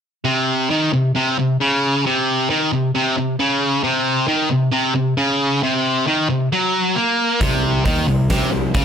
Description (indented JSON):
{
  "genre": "hard rock",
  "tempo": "134 BPM",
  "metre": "4/4",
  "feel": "straight",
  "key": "C minor",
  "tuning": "A4 = 440 Hz",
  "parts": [
    { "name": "sludgy distorted guitar", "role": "riff", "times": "0.2-8.8 s", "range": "C3 to Bb3", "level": "-16 LUFS", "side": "equal", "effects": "overdrive" },
    { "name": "fuzz picked electric bass", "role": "bass", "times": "7.4-8.8 s", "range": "C2 to Eb2", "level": "-22 LUFS", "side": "equal", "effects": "overdrive" },
    { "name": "huge arena drum kit", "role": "drums", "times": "7.4-8.8 s", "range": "hi-hat, kick drum, snare drum", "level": "-20 LUFS", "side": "equal", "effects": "none" }
  ],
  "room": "light reverb, studio reverb",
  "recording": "none",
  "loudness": "-16 LUFS",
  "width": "side -8 dB against mid",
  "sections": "0.2-8.8 A section",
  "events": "none",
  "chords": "0.2 Cm"
}